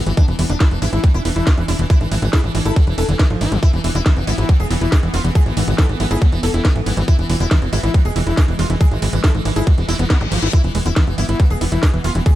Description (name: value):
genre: psychedelic trance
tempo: 139 BPM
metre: 4/4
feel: straight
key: unclear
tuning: A4 = 440 Hz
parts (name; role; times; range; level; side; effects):
- sitar; melody; 0.0-12.3 s; E3 to A4; -26 LUFS; equal; phaser, sidechain pumping, digital delay
- pulsing gated texture; sustained chords; 0.0-12.4 s; E3 to D4; -27 LUFS; right 1 dB; chorus, built-in reverb, sidechain pumping
- tight sequencer bass; bass; 0.0-12.2 s; E1 to G#1; -19 LUFS; equal; none
- screaming distorted acid line; riff; 0.1-12.3 s; D3 to E4; -25 LUFS; left 1 dB; distortion, chorus, auto-pan, sidechain pumping, digital delay
- drum and bass drum kit; drums; 0.1-12.3 s; hi-hat, ride cymbal, snare drum; -26 LUFS; equal; none
- electronic kick drum; drums; 0.2-12.3 s; none; -12 LUFS; equal; none
- reverse cymbal and zap; sound effects; 9.9-10.5 s; none; -26 LUFS; left 4 dB; none
room: little or no reverb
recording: none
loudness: -14 LUFS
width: side -14 dB against mid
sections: 0.0-12.4 A section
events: reverse cymbal 9.9-10.5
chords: 0.0 E5